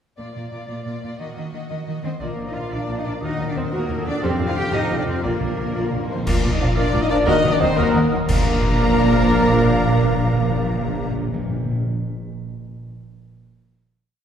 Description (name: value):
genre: cinematic, heroic adventure film score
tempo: 119 BPM (dotted quarters)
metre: 6/8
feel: straight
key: Bb major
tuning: A4 = 440 Hz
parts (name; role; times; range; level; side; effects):
- warm symphonic violin section; melody; 0.2-11.1 s; Bb4 to Bb5; -30 LUFS; left 4 dB; none
- rich symphonic violin section; second line; 0.2-11.1 s; F4 to Bb5; -35 LUFS; left 1 dB; none
- rich symphonic viola section; accompaniment; 0.2-11.1 s; Bb3 to D5; -30 LUFS; right 1 dB; none
- rich symphonic cello section; bass; 0.2-11.1 s; Bb2 to G4; -26 LUFS; right 1 dB; none
- flute section; second line; 2.2-11.1 s; F5 to G5; -32 LUFS; left 1 dB; none
- mellow clarinet; second line; 2.2-11.1 s; A4 to Bb4; -31 LUFS; right 2 dB; none
- warm oboe; second line; 2.2-11.1 s; D5 to F5; -34 LUFS; right 1 dB; none
- mellow French horn section; sustained chords; 2.2-11.1 s; A3 to F4; -25 LUFS; left 2 dB; none
- mellow trombone section; sustained chords; 2.2-11.1 s; Bb2 to Eb4; -30 LUFS; right 3 dB; none
- concert harp; arpeggios; 2.2-12.2 s; Bb2 to Gb5; -32 LUFS; left 6 dB; none
- mellow trumpet; stabs; 2.2-11.1 s; G4 to F5; -29 LUFS; equal; none
- rich symphonic double bass section; bass; 2.2-11.1 s; Bb1 to F2; -26 LUFS; right 2 dB; none
- cymbal swell, clash cymbals and concert bass drum; percussion; 4.2-8.9 s; none; -25 LUFS; equal; none
- timpani; percussion; 5.2-6.2, 8.3-11.8 s; Bb2; -26 LUFS; equal; none
room: wet concert hall reverb, RT60 1.9 s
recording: heard from further back in the room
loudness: -18 LUFS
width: side -8 dB against mid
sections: 0.2-2.2 intro; 2.2-6.3 theme; 6.3-8.3 outro; 8.3-10.3 final chord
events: timpani fill 5.2-6.3; band accent 6.3-6.6, 8.3-8.6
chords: 0.2 Bb; 1.2 Ebm; 2.2 Bb; 3.2 Ebm; 4.2 Fadd9; 5.2 Bb; 7.3 Ebm; 8.3 Bb